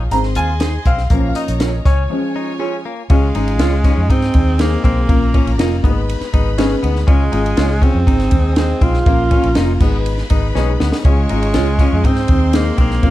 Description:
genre	uptempo 1960s-style soul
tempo	121 BPM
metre	4/4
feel	straight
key	Db major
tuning	A4 = 439 Hz
part	clear studio string section	second line	0.0-13.1 s	F4 to Db6	-31 LUFS	left 2 dB	none
part	clear upright piano	accompaniment	0.0-13.1 s	Eb3 to Bb5	-21 LUFS	left 2 dB	none
part	direct-recorded clean electric guitar	riff	0.0-13.1 s	Bb3 to F4	-28 LUFS	left 6 dB	none
part	vintage muted fingered electric bass	bass	0.0-13.1 s	F1 to Ab2	-17 LUFS	equal	none
part	compact cocktail drum kit	drums	0.1-13.1 s	crash cymbal, hi-hat, kick drum, ride cymbal, snare drum	-16 LUFS	equal	none
part	electric guitar through a small old amp	stabs	0.6-12.7 s	Db4 to Db5	-24 LUFS	right 6 dB	none
part	warm alto saxophone	melody	3.1-13.1 s	Ab3 to F4	-20 LUFS	right 2 dB	plate reverb
room	light reverb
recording	dark, warm production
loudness	-13 LUFS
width	side -15 dB against mid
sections	0.0-3.1 A section; 3.1-13.1 B section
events	upright piano solo 0.0-3.1; break 2.1-3.1; drum fill 10.5-11.0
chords	0.1 Ab; 1.1 Bbm; 1.9 Db; 4.1 Ab; 5.1 Bbm; 5.8 Abm; 7.1 Db; 8.1 Ab; 9.1 Bbm; 9.8 Abm; 11.0 Db; 12.0 Ab

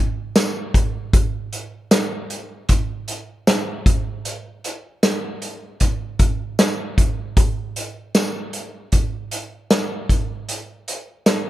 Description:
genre	dream pop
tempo	77 BPM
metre	4/4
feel	straight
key	none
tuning	none
part	vintage drum kit	drums	0.4-11.4 s	hi-hat, kick drum, snare drum, tambourine	-18 LUFS	equal	none
room	moderate spring reverb, RT60 1.8 s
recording	none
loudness	-19 LUFS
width	side -14 dB against mid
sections	0.0-11.5 A section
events	none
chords	none

